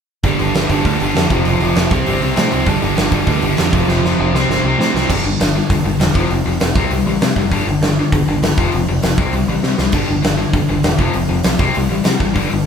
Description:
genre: punk rock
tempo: 198 BPM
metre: 4/4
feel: straight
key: unclear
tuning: A4 = 439 Hz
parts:
  - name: sludgy distorted guitar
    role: riff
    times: 0.2-5.1 s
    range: F2 to C4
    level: -18 LUFS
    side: right 6 dB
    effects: overdrive
  - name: tight distorted guitar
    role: riff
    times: 0.2-12.6 s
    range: F2 to C4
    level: -18 LUFS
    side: left 4 dB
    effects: distortion
  - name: growling picked electric bass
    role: bass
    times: 0.2-12.6 s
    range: E1 to C3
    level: -20 LUFS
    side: equal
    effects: overdrive
  - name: big rock drum kit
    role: drums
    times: 0.2-12.4 s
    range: crash cymbal, hi-hat, kick drum, snare drum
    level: -18 LUFS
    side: right 1 dB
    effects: none
room: moderate studio reverb, RT60 0.6 s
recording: band playing live in one room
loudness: -13 LUFS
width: side -7 dB against mid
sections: 0.2-5.1 A section; 5.1-12.7 B section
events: drum fill 3.9-5.1, 9.6-9.9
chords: 0.2 G5; 1.3 F5; 1.9 C5; 2.7 G5; 3.7 F5; 4.3 C5; 5.1 G5; 6.2 F5; 6.8 C5; 7.5 G5; 8.6 F5; 9.2 C5; 9.9 G5; 11.0 F5; 11.6 C5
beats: | 0.24 0.54 0.85 1.15 | 1.46 1.76 2.07 2.37 | 2.67 2.98 3.28 3.59 | 3.89 4.19 4.50 4.80 | 5.10 5.40 5.71 6.01 | 6.31 6.61 6.92 7.22 | 7.52 7.82 8.12 8.43 | 8.73 9.03 9.33 9.64 | 9.94 10.24 10.54 10.85 | 11.15 11.45 11.76 12.06 | 12.37

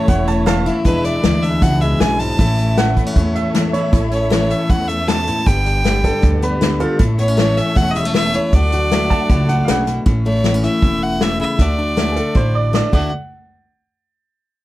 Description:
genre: honky-tonk and classic country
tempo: 156 BPM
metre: 4/4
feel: straight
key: unclear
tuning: A4 = 445 Hz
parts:
  - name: bright fiddle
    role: melody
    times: 0.0-13.1 s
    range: B4 to A5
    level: -21 LUFS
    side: right 1 dB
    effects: none
  - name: bright upright piano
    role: second line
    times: 0.0-13.1 s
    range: F4 to A5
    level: -22 LUFS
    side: right 3 dB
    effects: none
  - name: picked steel-string acoustic guitar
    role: accompaniment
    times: 0.0-13.1 s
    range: E2 to G4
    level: -20 LUFS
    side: left 2 dB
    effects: none
  - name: warm studio string section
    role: sustained chords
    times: 0.0-10.0 s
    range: E3 to F#5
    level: -27 LUFS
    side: equal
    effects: none
  - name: upright bass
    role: bass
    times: 0.1-13.1 s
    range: E1 to E2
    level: -20 LUFS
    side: equal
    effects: none
  - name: unplugged drum kit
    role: drums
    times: 0.1-13.0 s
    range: crash cymbal, hi-hat, kick drum, snare drum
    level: -18 LUFS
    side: equal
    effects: none
room: little or no reverb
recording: none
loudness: -14 LUFS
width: side -16 dB against mid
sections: 0.0-10.1 A section; 10.1-13.1 B section; 13.1-14.6 C section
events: drum fill 12.9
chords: 0.0 A; 0.8 E7; 2.4 A; 5.5 G; 7.0 A; 8.5 D; 10.1 A; 11.6 D; 13.1 N.C.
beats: 0.08 0.47 | 0.85 1.24 1.62 2.00 | 2.39 2.77 3.16 3.54 | 3.93 4.31 4.70 5.08 | 5.46 5.85 6.23 6.61 | 7.00 7.38 7.76 8.14 | 8.53 8.91 9.29 9.68 | 10.06 10.44 10.82 11.21 | 11.59 11.97 12.36 12.74

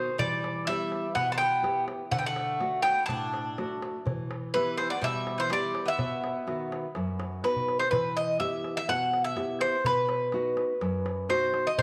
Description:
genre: greek folk, Greek bouzouki band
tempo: 124 BPM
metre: 4/4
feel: straight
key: E minor, E harmonic minor from 7.9 s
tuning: A4 = 440 Hz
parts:
  - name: Greek bouzouki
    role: melody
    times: 0.0-11.8 s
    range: B4 to A5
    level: -30 LUFS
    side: equal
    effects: none
  - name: Greek bouzouki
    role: second line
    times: 0.0-7.4 s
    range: D#3 to D4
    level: -39 LUFS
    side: equal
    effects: none
  - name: nylon-string guitar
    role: accompaniment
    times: 0.0-11.8 s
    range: F#2 to G4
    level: -37 LUFS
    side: equal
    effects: none
  - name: darbuka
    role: percussion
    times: 0.1-11.8 s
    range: none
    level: -39 LUFS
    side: equal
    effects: none
room: wet echo chamber reverb, RT60 1.4 s, studio ambience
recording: none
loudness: -29 LUFS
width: mono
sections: 0.0-7.9 A section; 7.9-11.8 B section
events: drum fill 7.6-7.9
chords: 0.2 Em; 2.1 D; 4.1 Em; 6.0 B; 7.9 Em; 9.8 B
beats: | 0.19 0.67 1.16 1.64 | 2.12 2.61 3.09 3.57 | 4.06 4.54 5.02 5.51 | 5.99 6.47 6.96 7.44 | 7.92 8.40 8.88 9.37 | 9.85 10.33 10.81 11.29 | 11.78

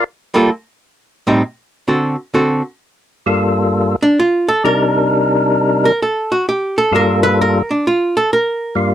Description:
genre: jazz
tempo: 131 BPM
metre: 4/4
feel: swing 65% on 8ths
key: G minor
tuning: A4 = 439 Hz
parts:
  - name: percussive tonewheel organ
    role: melody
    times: 0.0, 3.3-8.9 s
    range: G2 to Bb4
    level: -13 LUFS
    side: left 1 dB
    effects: slow rotary speaker
  - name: archtop guitar, miked and amplified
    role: accompaniment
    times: 0.3-8.9 s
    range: A2 to B4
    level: -14 LUFS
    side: right 1 dB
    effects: none
room: light reverb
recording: dry, close 1970s-style studio recording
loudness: -13 LUFS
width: side -11 dB against mid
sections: 0.0-2.8 A section; 2.8-8.9 A section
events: tonewheel organ solo 0.0-2.8; hollow-body jazz guitar solo 2.8-8.9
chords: 0.0 Gm9; 1.0 Am7b5; 1.9 D7; 2.8 Gm9; 4.6 Cm9; 6.5 Gm9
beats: 0.05 0.51 | 0.97 1.42 1.88 2.34 | 2.80 3.26 3.72 4.18 | 4.63 5.09 5.55 6.01 | 6.47 6.93 7.39 7.85 | 8.30 8.76

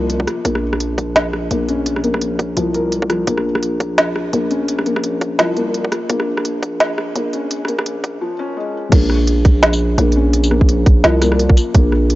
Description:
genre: half-time drum and bass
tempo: 170 BPM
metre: 4/4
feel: swing 58% on 16ths, half-time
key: Bb minor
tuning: A4 = 441 Hz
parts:
  - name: felt-muted upright piano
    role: arpeggios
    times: 0.0-12.2 s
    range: F3 to Bb4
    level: -20 LUFS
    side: left 2 dB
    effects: vintage 12-bit sampler grit, analog delay
  - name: growling 808-style bass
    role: bass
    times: 0.0-12.2 s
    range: Bb1 to C2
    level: -18 LUFS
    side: right 1 dB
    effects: none
  - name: organic electronic drum kit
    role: drums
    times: 0.1-12.2 s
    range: crash cymbal, hi-hat, rim click, snare drum, tambourine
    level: -19 LUFS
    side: right 1 dB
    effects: overdrive
  - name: electronic kick drum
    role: drums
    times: 0.2-11.8 s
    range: none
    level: -12 LUFS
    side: right 1 dB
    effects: overdrive, high-pass filter on kick
room: light reverb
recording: dry, gritty hardware recording, high-pass filter, nothing above 7.6 kHz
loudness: -14 LUFS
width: side -17 dB against mid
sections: 0.0-8.9 A section; 8.9-12.2 B section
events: build-up 0.0-8.9; drop 8.9-12.2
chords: 0.0 Bb5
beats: 0.10 | 0.45 0.80 1.16 1.51 | 1.86 2.21 2.57 2.92 | 3.27 3.63 3.98 4.33 | 4.69 5.04 5.39 5.74 | 6.10 6.45 6.80 7.16 | 7.51 7.86 8.21 8.57 | 8.92 9.27 9.63 9.98 | 10.33 10.69 11.04 11.39 | 11.74 12.10

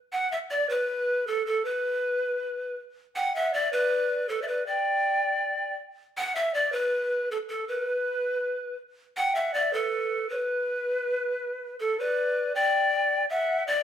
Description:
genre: andean folk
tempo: 80 BPM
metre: 2/4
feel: straight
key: B minor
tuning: A4 = 440 Hz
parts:
  - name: breathy bright large pan pipes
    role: melody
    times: 0.1-13.8 s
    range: A4 to F#5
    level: -26 LUFS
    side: left 1 dB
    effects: none
  - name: hollow quena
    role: second line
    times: 0.1-13.8 s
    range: A4 to G5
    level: -31 LUFS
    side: right 2 dB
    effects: none
room: moderate large studio reverb, RT60 1.0 s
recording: band playing live in one room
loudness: -25 LUFS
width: side -9 dB against mid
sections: 0.1-12.2 A section; 12.2-13.8 B section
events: none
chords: none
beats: | 0.12 0.88 | 1.64 2.39 | 3.15 3.90 | 4.66 5.41 | 6.17 6.92 | 7.67 8.42 | 9.18 9.93 | 10.67 11.42 | 12.17 12.91 | 13.66

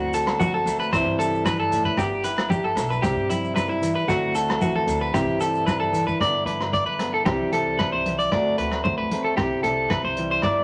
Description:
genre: highlife guitar band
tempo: 114 BPM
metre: 4/4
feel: straight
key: unclear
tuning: A4 = 440 Hz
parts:
  - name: fingerpicked plugged-in swing-style acoustic guitar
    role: accompaniment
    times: 0.0-10.6 s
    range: G2 to F#4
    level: -30 LUFS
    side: equal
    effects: none
  - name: electric guitar at the edge of break-up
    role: arpeggios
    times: 0.0-10.6 s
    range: E4 to D5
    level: -25 LUFS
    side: equal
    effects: none
  - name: upright bass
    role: bass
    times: 0.0-10.6 s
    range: G1 to G3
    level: -36 LUFS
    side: equal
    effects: none
  - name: vintage drum kit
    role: drums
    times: 0.1-10.6 s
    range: hi-hat, kick drum, rim click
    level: -32 LUFS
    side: equal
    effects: none
  - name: congas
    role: percussion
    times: 0.1-10.5 s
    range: none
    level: -32 LUFS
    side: equal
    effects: none
  - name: maracas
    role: percussion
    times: 0.1-6.1 s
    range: none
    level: -47 LUFS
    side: equal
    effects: none
  - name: agogo bells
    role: percussion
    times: 0.3-10.6 s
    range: none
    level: -39 LUFS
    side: equal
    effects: none
room: wet studio reverb, RT60 0.8 s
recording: none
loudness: -23 LUFS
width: mono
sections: 0.0-6.2 A section; 6.2-10.6 B section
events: none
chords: 0.0 D7; 0.9 Cadd9; 2.0 G6; 3.0 Cadd9; 4.1 D7; 5.1 Cadd9; 6.2 G6; 7.3 Cadd9; 8.3 D7; 9.4 Cadd9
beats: 0.40 0.93 1.45 | 1.98 2.51 3.04 3.56 | 4.09 4.62 5.15 5.67 | 6.20 6.73 7.26 7.79 | 8.32 8.85 9.38 9.91 | 10.43

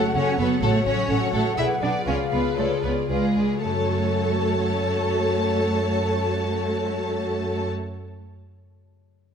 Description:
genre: cinematic, playful, whimsical film cue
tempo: 109-130 BPM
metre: 3/4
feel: straight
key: F# minor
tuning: A4 = 440 Hz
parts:
  - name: large flute ensemble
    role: second line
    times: 0.0-7.7 s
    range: C#5 to F#5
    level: -30 LUFS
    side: left 1 dB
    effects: none
  - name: rich studio violin section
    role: second line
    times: 0.0-7.7 s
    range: A4 to F#5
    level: -33 LUFS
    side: left 3 dB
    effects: none
  - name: warm studio viola section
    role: accompaniment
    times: 0.0-7.7 s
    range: E#4 to A4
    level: -30 LUFS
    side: right 4 dB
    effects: none
  - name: concert harp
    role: arpeggios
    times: 0.0-8.6 s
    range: F#2 to C#5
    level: -30 LUFS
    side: left 10 dB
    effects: none
  - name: warm studio cello section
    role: bass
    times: 0.0-7.7 s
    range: G#3 to E4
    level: -27 LUFS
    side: right 2 dB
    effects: none
  - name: rich studio violin section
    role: melody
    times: 0.2-7.7 s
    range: G#4 to A5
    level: -31 LUFS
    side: left 3 dB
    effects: none
  - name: dark French horn section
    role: sustained chords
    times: 0.2-7.7 s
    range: E#4 to B4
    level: -30 LUFS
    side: left 2 dB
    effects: none
  - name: clear studio double bass section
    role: bass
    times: 0.2-7.7 s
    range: F#1 to F#2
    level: -28 LUFS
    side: right 3 dB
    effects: none
room: moderate scoring stage reverb, RT60 1.8 s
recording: none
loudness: -21 LUFS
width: side -7 dB against mid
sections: 0.0-3.6 A section; 3.6-6.9 B section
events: slowing down 0.0-3.6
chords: 0.0 F#m; 0.6 F#m/A; 1.6 G#dim/B; 2.1 C#7b9; 3.6 F#m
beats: 0.16 | 0.63 1.10 1.58 | 2.07 2.57 3.09 | 3.64 4.19 4.73 | 5.28 5.83 6.38

